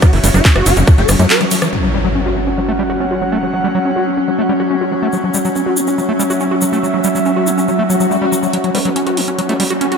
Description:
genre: psychedelic trance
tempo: 141 BPM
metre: 4/4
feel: straight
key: unclear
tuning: A4 = 441 Hz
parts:
  - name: swarming rave lead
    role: melody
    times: 0.0-1.7 s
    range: F#3 to B4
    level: -21 LUFS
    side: right 2 dB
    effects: chorus, phaser, sidechain pumping, ping-pong delay
  - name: evolving wavetable pad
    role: sustained chords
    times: 0.0-10.0 s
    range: F#3 to E4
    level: -20 LUFS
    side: equal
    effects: chorus, built-in reverb, phaser, sidechain pumping
  - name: overdriven acid bass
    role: riff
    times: 0.0-10.0 s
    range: E3 to F#4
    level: -18 LUFS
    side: moving between left 6 dB and right 4 dB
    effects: auto-pan, sidechain pumping, ping-pong delay
  - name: electronic kick drum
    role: drums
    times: 0.0-1.0 s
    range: none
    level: -8 LUFS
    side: equal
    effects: small room ambience
  - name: techno drum kit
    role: drums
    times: 0.0-1.7, 8.5-10.0 s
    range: handclaps, hi-hat, ride cymbal, rim click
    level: -19 LUFS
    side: equal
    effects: low-pass filter on hats, small room ambience, low-pass filter on cymbals, low-pass filter on snare
  - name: tube shaker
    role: percussion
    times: 0.0-1.7, 5.1-8.5 s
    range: none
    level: -23 LUFS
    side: left 1 dB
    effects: none
  - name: airy breathy pad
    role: texture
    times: 0.0-10.0 s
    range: C#4 to F#5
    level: -20 LUFS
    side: right 1 dB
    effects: chorus, sidechain pumping
  - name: tight sequencer bass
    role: bass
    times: 0.1-1.3 s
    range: F#1 to F#2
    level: -13 LUFS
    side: equal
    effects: none
  - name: impact, swell and riser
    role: sound effects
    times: 1.7-3.4, 7.8-10.0 s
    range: none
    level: -23 LUFS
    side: equal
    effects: none
  - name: formant-sweep wobble bass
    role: second line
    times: 8.7-9.7 s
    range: F#3 to B3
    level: -26 LUFS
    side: equal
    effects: chorus, sidechain pumping, high-pass filter, ping-pong delay
room: wet huge ambient reverb, RT60 4.9 s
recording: dreamy mix soaked in reverb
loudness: -12 LUFS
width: side -6 dB against mid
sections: 0.0-1.7 A section; 1.7-8.5 B section; 8.5-10.0 C section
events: drop 0.0-1.7; break 1.3-1.7; impact 1.7-3.4; swell 7.8-8.5; build-up 8.5-10.0; filter sweep on acid bass 8.5-10.0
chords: 0.0 F#5

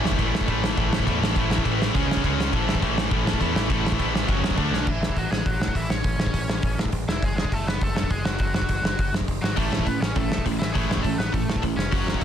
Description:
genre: punk rock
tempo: 204 BPM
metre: 4/4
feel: straight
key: A major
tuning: A4 = 441 Hz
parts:
  - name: cranked stack guitar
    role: riff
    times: 0.0-4.9, 9.6-12.2 s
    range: A2 to C#5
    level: -28 LUFS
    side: right 12 dB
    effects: overdrive
  - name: high-gain distorted guitar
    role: riff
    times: 0.0-4.9 s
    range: F#2 to D4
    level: -31 LUFS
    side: equal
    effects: distortion
  - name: tight distorted guitar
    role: riff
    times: 0.0-4.9, 9.6-12.2 s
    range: F#2 to D4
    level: -28 LUFS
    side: left 14 dB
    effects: distortion
  - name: growling picked electric bass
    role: bass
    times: 0.0-12.2 s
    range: E1 to C#3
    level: -28 LUFS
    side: equal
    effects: overdrive
  - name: loose indie drum kit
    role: drums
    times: 0.1-12.2 s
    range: crash cymbal, hi-hat, kick drum, snare drum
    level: -24 LUFS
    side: equal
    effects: none
  - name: biting lead guitar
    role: melody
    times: 4.7-12.2 s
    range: E3 to C#5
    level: -30 LUFS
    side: equal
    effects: overdrive
room: little or no reverb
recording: dense, heavily limited modern master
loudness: -21 LUFS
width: side -9 dB against mid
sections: 0.2-4.9 A section; 4.9-12.2 B section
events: drum fill 4.7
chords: 0.2 A; 1.9 C#5; 2.5 A; 4.3 F#5; 4.6 D5; 4.9 A; 7.2 F#m; 9.6 A

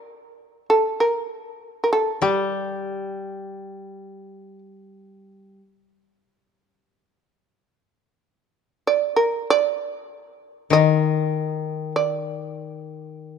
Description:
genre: japanese traditional, Japanese chamber music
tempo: 49 BPM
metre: 4/4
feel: rubato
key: unclear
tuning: A4 = 439 Hz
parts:
  - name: shamisen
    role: melody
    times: 0.0-13.4 s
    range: G4 to Eb5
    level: -20 LUFS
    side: right 2 dB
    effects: none
  - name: koto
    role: accompaniment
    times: 2.2-13.4 s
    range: Eb3 to G3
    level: -24 LUFS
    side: left 7 dB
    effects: none
room: light reverb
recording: close, detailed microphones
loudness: -20 LUFS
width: side -6 dB against mid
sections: 0.0-13.4 A section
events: none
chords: none

